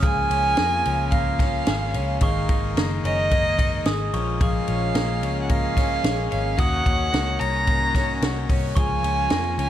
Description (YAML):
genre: jangly indie pop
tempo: 110 BPM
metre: 4/4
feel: straight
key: Db major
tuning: A4 = 440 Hz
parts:
  - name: warm violin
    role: melody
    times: 0.0-9.7 s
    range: Eb5 to Bb5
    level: -25 LUFS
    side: right 3 dB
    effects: none
  - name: glockenspiel with soft plastic mallets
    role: second line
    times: 0.0-9.7 s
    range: Db6 to F6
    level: -34 LUFS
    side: right 2 dB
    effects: analog delay
  - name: hand-pumped harmonium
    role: sustained chords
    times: 0.0-9.7 s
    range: Db3 to Bb4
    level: -33 LUFS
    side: left 2 dB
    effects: none
  - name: twelve-string electric guitar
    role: arpeggios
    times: 0.0-9.7 s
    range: Eb3 to Ab4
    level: -29 LUFS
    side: left 5 dB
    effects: none
  - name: vintage muted picked electric bass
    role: bass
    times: 0.0-9.7 s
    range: Gb1 to F2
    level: -26 LUFS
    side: equal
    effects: none
  - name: compact cocktail drum kit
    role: drums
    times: 0.0-9.7 s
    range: hi-hat, kick drum, ride cymbal, snare drum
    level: -24 LUFS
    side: equal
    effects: none
room: light reverb, small room ambience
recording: dark, warm production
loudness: -20 LUFS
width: side -11 dB against mid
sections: 0.0-9.7 A section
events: none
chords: 0.0 Db6; 2.2 Absus2; 4.1 Bbm7; 6.6 Ebm7; 8.8 Db6